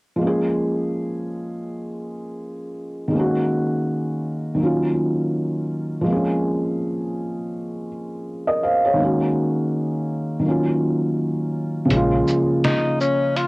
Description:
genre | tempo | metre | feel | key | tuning
lo-fi hip hop | 82 BPM | 4/4 | swing 60% on 16ths | Bb minor | A4 = 440 Hz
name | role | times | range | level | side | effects
felt-muted upright piano | accompaniment | 0.2-13.5 s | Db3 to F5 | -20 LUFS | equal | low-pass filter
vintage muted fingered electric bass | bass | 11.9-12.2 s | Bb1 | -23 LUFS | equal | none
lo-fi sampler-style drum kit | drums | 11.9-13.5 s | hi-hat, shaker, snare drum | -24 LUFS | equal | cassette tape
breathy tenor saxophone | melody | 12.6-13.5 s | Db4 to F4 | -20 LUFS | left 2 dB | low-pass filter, cassette tape
room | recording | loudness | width
wet booth ambience, RT60 0.2 s | home recording on cassette | -19 LUFS | side -25 dB against mid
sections
0.2-11.9 A section; 11.9-13.5 B section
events
kick muted 11.9-13.5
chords
0.2 Bbm7; 3.1 Gb69; 4.6 Ebm9; 6.1 Bbm7; 9.0 Gb69; 10.4 Ebm9; 11.9 Bbm7

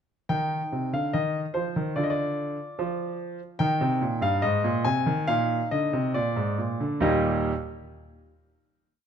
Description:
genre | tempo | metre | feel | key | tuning
classical-period piano sonatina | 67-73 BPM | 2/4 | straight | Eb major | A4 = 438 Hz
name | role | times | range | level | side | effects
clear concert grand piano | solo | 0.3-7.5 s | Eb2 to Ab5 | -24 LUFS | equal | none
room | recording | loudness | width
moderate recital hall reverb, RT60 1.6 s | close, detailed microphones | -24 LUFS | side -8 dB against mid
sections
0.3-7.0 theme; 7.0-8.8 final chord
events
none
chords
0.3 Cmadd11; 2.0 Dm; 3.6 Eb; 4.4 Ab; 5.3 Bbsus4; 6.1 Bb7; 7.0 Eb

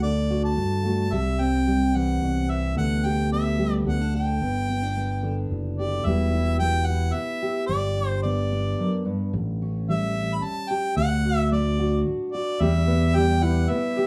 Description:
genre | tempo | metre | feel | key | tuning
acoustic folk duo or small band | 110 BPM | 3/4 | straight | G major | A4 = 440 Hz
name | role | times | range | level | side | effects
bright harmonica | melody | 0.0-14.1 s | D5 to B5 | -31 LUFS | equal | none
fingerpicked steel-string acoustic guitar | accompaniment | 0.0-14.1 s | E2 to A4 | -29 LUFS | equal | none
fingered electric bass | bass | 0.0-13.7 s | E1 to G2 | -26 LUFS | equal | none
bright upright piano | arpeggios | 12.6-14.1 s | G3 to G4 | -28 LUFS | equal | none
room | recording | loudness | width
moderate studio reverb, RT60 0.8 s | none | -24 LUFS | mono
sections
0.0-6.1 A section; 6.1-14.1 B section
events
none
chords
0.0 D; 1.1 C; 2.8 G/D; 3.9 D; 4.4 G; 6.1 Em; 7.7 G; 9.3 A7; 11.0 D; 12.6 Em

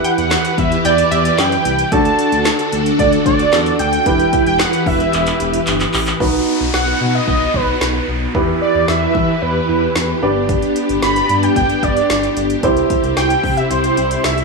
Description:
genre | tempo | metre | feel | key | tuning
synth-pop | 112 BPM | 4/4 | straight | E minor | A4 = 441 Hz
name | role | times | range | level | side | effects
wide unison lead | melody | 0.0-14.4 s | B4 to B5 | -18 LUFS | right 2 dB | slapback echo
analog pluck | second line | 0.0-1.2 s | E5 to G5 | -24 LUFS | left 1 dB | chorus, slapback echo
warm baby grand piano | accompaniment | 0.0-14.4 s | D4 to C5 | -21 LUFS | right 2 dB | none
string machine, violas | sustained chords | 0.0-14.4 s | C3 to B4 | -19 LUFS | left 1 dB | ensemble chorus
deep house drum kit | drums | 0.0-14.4 s | handclaps, hi-hat, kick drum, snare drum | -21 LUFS | left 1 dB | gated reverb
smooth synth bass | bass | 0.2-14.4 s | E1 to E3 | -21 LUFS | equal | none
downlifter and swell | sound effects | 6.2-14.4 s | none | -26 LUFS | left 1 dB | none
room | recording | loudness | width
moderate plate reverb, RT60 2.0 s | none | -13 LUFS | side -2 dB against mid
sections
0.0-6.2 A section; 6.2-14.4 B section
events
drum fill 5.1-6.2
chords
0.0 Em; 1.9 D; 4.1 Em; 6.2 B; 8.3 Em; 10.2 G; 12.6 C

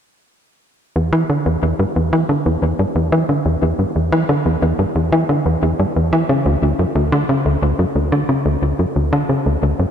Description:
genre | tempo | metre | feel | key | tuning
ambient | 90 BPM | 4/4 | straight | E dorian | A4 = 443 Hz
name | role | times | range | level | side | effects
tight sequencer bass | solo | 1.0-9.9 s | D2 to E3 | -14 LUFS | equal | ping-pong delay
room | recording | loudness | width
wet plate reverb, RT60 3.3 s | echo-heavy mix | -15 LUFS | side -8 dB against mid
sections
1.0-9.9 A section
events
none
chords
none

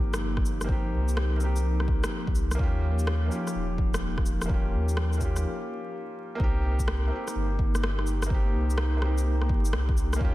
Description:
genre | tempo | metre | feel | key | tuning
future garage | 126 BPM | 4/4 | swing 66% on 16ths | C phrygian | A4 = 440 Hz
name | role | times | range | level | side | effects
felt-muted upright piano | accompaniment | 0.0-10.3 s | Bb3 to G4 | -35 LUFS | equal | sidechain pumping, ping-pong delay
airy breathy pad | sustained chords | 0.0-10.3 s | F3 to G4 | -35 LUFS | left 1 dB | chorus, sidechain pumping
warm sub bass | bass | 0.0-10.3 s | Eb1 to Eb2 | -27 LUFS | equal | tube saturation, sidechain pumping
electronic rim click and shaker | drums | 0.1-10.2 s | none | -36 LUFS | left 1 dB | studio reverb
electronic kick drum | drums | 0.4-10.3 s | none | -27 LUFS | equal | studio reverb
room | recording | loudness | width
light reverb, digital ambience | vinyl crackle | -24 LUFS | side -16 dB against mid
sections
0.0-6.4 A section; 6.4-10.3 B section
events
break 5.4-6.4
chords
0.0 Cm7; 2.6 Eb7; 6.4 Cm7

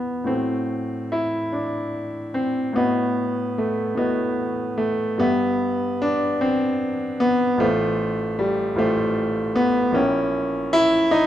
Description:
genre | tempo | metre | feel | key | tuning
classical, romantic nocturne for solo piano | 46-52 BPM (dotted quarters) | 12/8 | rubato | unclear | A4 = 439 Hz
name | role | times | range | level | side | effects
warm baby grand piano | solo | 0.0-11.3 s | A1 to G5 | -20 LUFS | equal | none
room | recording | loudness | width
moderate recital hall reverb, RT60 1.4 s | close, detailed microphones | -20 LUFS | side -12 dB against mid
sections
0.3-11.3 A section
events
none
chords
0.3 F#dim/A; 2.8 B7/A; 5.2 Em/G; 7.6 F/A; 10.0 A#dim7

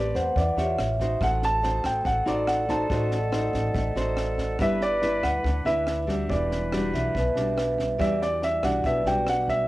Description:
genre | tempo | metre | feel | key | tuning
bossa nova | 142 BPM | 4/4 | straight | E minor | A4 = 439 Hz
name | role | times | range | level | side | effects
warm grand piano | melody | 0.0-9.7 s | C5 to A5 | -26 LUFS | right 1 dB | cassette tape
nylon-string guitar | accompaniment | 0.0-9.7 s | B2 to C#5 | -29 LUFS | left 1 dB | cassette tape
upright bass | bass | 0.0-9.6 s | E1 to E2 | -30 LUFS | equal | none
compact cocktail drum kit | drums | 0.1-9.5 s | kick drum, rim click, snare drum | -34 LUFS | equal | none
vibraphone with medium hard mallets | accompaniment | 0.2-9.7 s | B4 to F#5 | -30 LUFS | right 2 dB | cassette tape
silver concert flute | second line | 1.2-7.7 s | A4 to B4 | -34 LUFS | right 1 dB | cassette tape
room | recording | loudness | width
light reverb | home recording on cassette | -22 LUFS | side -17 dB against mid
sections
0.0-8.0 A section; 8.0-9.7 A section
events
none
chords
0.0 Am9; 0.8 A7alt; 1.2 D7b9/A; 4.6 G6; 6.3 Em9

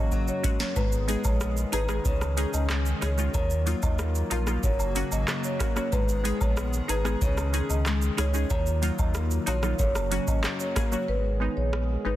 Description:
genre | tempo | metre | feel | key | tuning
dancehall | 93 BPM | 4/4 | straight | unclear | A4 = 442 Hz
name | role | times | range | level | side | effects
marimba with soft mallets | melody | 0.0-12.2 s | Bb4 to Eb5 | -33 LUFS | equal | tape echo
hollow soft pad | sustained chords | 0.0-12.2 s | Db3 to Ab4 | -35 LUFS | equal | chorus, sidechain pumping
flamenco guitar | arpeggios | 0.0-11.1 s | Gb2 to F4 | -35 LUFS | left 6 dB | none
warm sub bass | bass | 0.0-12.2 s | Gb1 to Eb2 | -28 LUFS | equal | none
booming analog drum machine | drums | 0.1-11.9 s | handclaps, hi-hat, kick drum, rim click, shaker, snare drum | -28 LUFS | equal | none
wavetable chord stab | accompaniment | 0.4-12.2 s | Gb3 to Ab4 | -34 LUFS | equal | none
cabasa and woodblock | percussion | 0.4-10.9 s | none | -41 LUFS | equal | none
room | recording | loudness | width
light reverb | dense, heavily limited modern master | -24 LUFS | side -14 dB against mid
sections
0.0-11.1 A section; 11.1-12.2 B section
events
drum fill 0.1-0.8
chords
0.0 Gb; 0.8 Abm; 2.1 Dbsus2; 3.3 Ebmadd9; 4.6 Gb; 5.9 Abm; 7.2 Dbsus2; 8.5 Ebmadd9; 9.8 Gb; 11.1 Abm

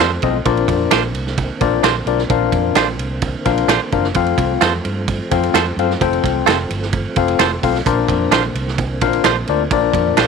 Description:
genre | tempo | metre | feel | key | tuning
uptempo 1960s-style soul | 130 BPM | 4/4 | straight | Bb major | A4 = 439 Hz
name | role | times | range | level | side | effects
barky tine electric piano | accompaniment | 0.0-10.3 s | Bb2 to G5 | -18 LUFS | left 14 dB | overdrive, auto-pan
tonewheel organ | sustained chords | 0.0-10.3 s | D3 to D4 | -27 LUFS | right 1 dB | slow rotary speaker, chorus vibrato
direct-recorded clean electric guitar | stabs | 0.0-10.3 s | D4 to C5 | -17 LUFS | right 14 dB | none
vintage muted fingered electric bass | bass | 0.0-10.3 s | F1 to G2 | -23 LUFS | right 1 dB | none
finger snap | percussion | 0.0-10.3 s | none | -22 LUFS | left 12 dB | none
vintage drum kit | drums | 0.2-10.3 s | hi-hat, kick drum, ride cymbal, snare drum | -21 LUFS | right 6 dB | none
room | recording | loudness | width
light reverb, small room reverb | 1960s-style stereo with parts hard left and right | -14 LUFS | side -5 dB against mid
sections
0.0-10.3 A section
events
none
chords
0.5 Bbadd9; 4.2 F; 7.9 Bbadd9

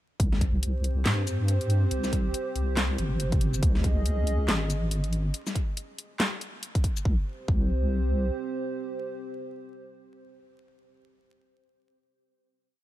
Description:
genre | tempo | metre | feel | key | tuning
deep dubstep | 140 BPM | 4/4 | swing 59% on 16ths, half-time | C phrygian | A4 = 440 Hz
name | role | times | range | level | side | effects
dark analog pad | sustained chords | 0.2-11.2 s | C4 to Eb5 | -34 LUFS | right 2 dB | chorus
deep soft wobble bass | bass | 0.2-8.3 s | G1 to G2 | -26 LUFS | equal | chorus
dubstep drum kit | drums | 0.2-7.0 s | handclaps, hi-hat, shaker, snare drum | -31 LUFS | left 1 dB | none
electronic kick drum | drums | 0.2-7.6 s | none | -25 LUFS | equal | none
room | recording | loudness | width
little or no reverb | vinyl crackle | -25 LUFS | side -14 dB against mid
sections
0.2-7.1 drop; 7.1-10.5 final chord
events
drop 0.2-7.1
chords
0.2 C5; 3.6 Dbsus2; 7.1 C5

